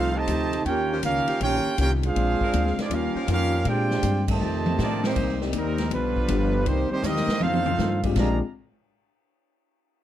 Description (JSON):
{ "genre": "jazz, big band swing", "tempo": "160 BPM", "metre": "4/4", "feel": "swing 66% on 8ths", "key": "unclear", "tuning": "A4 = 441 Hz", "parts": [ { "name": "clear trumpet section", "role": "melody", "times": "0.0-8.4 s", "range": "G3 to Bb5", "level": "-27 LUFS", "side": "right 3 dB", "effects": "slapback echo" }, { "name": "mellow trombone section", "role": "second line", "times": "0.0-8.4 s", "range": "Bb2 to G4", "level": "-28 LUFS", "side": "right 3 dB", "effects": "none" }, { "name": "vintage hollow-body jazz guitar", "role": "accompaniment", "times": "0.0-8.4 s", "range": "F2 to G4", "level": "-31 LUFS", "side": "left 9 dB", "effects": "none" }, { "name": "upright bass", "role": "bass", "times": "0.0-8.4 s", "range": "G1 to Bb2", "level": "-27 LUFS", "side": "equal", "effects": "none" }, { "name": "swinging big-band drum kit", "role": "drums", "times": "0.3-8.3 s", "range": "crash cymbal, hi-hat, kick drum, ride cymbal, snare drum, toms", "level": "-30 LUFS", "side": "equal", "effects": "none" }, { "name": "warm saxophone section", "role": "sustained chords", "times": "0.9-5.1 s", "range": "F3 to Bb4", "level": "-34 LUFS", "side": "left 3 dB", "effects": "none" }, { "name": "warm concert grand piano", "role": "accompaniment", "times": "5.4-8.4 s", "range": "Bb2 to D5", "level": "-29 LUFS", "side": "left 7 dB", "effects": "none" } ], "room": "light reverb", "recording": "none", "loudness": "-21 LUFS", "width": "side -12 dB against mid", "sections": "0.0-5.2 A section; 5.2-8.2 B section; 8.2-9.7 C section", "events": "band accent 4.2; drum fill 4.4-5.2, 7.0-7.8", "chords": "0.0 F9; 0.7 Eb9; 2.2 Bb9; 2.9 Eb9; 3.7 Bb9; 4.4 F9; 5.2 Cm7; 5.9 G7; 6.7 Cm7; 7.4 F13; 8.2 Bb13" }